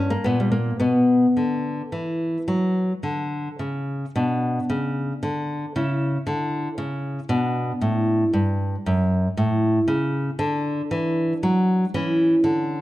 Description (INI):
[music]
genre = classical, baroque-style dance for nylon-string guitar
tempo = 69-80 BPM (dotted quarters)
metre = 12/8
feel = rubato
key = B minor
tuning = A4 = 440 Hz
[part]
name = nylon-string guitar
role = solo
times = 0.0-12.8 s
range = F#2 to E4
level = -20 LUFS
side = equal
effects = none
[sound]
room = moderate recital hall reverb, RT60 1.4 s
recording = dark, warm production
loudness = -20 LUFS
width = side -16 dB against mid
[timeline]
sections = 0.0-4.2 A section; 4.2-12.8 B section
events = none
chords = 0.0 F# (rootless); 0.8 Bm; 5.7 C#m; 7.3 Bm; 10.4 D; 11.9 C#m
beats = | 0.81 1.65 2.48 3.31 | 4.15 4.96 5.75 6.53 | 7.29 8.08 8.85 9.62 | 10.40 11.18 11.95 12.70